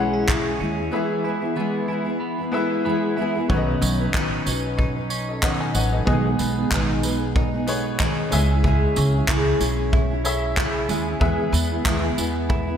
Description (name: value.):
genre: acoustic pop.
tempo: 93 BPM.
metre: 4/4.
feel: swing 55% on 16ths.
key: E major.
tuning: A4 = 439 Hz.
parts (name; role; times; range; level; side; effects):
clear upright piano; accompaniment; 0.0-12.8 s; B3 to G#5; -30 LUFS; left 5 dB; none.
fingerpicked steel-string acoustic guitar; accompaniment; 0.0-12.8 s; B2 to B4; -24 LUFS; left 1 dB; double-tracked left and right.
twelve-string electric guitar; arpeggios; 0.0-12.8 s; E3 to E4; -28 LUFS; right 4 dB; phaser, tape echo, slapback echo.
upright bass; bass; 0.0-12.8 s; A1 to E2; -24 LUFS; equal; none.
natural country drum kit; drums; 0.3-12.7 s; handclaps, kick drum, tambourine; -24 LUFS; equal; none.
room: moderate lush hall reverb, RT60 2.2 s.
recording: big arena sound.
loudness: -19 LUFS.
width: side -8 dB against mid.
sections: 0.0-3.5 A section; 3.5-12.8 B section.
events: none.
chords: 0.0 C#m; 0.9 E; 3.5 Badd9; 6.1 G#m; 8.3 C#m; 11.2 E.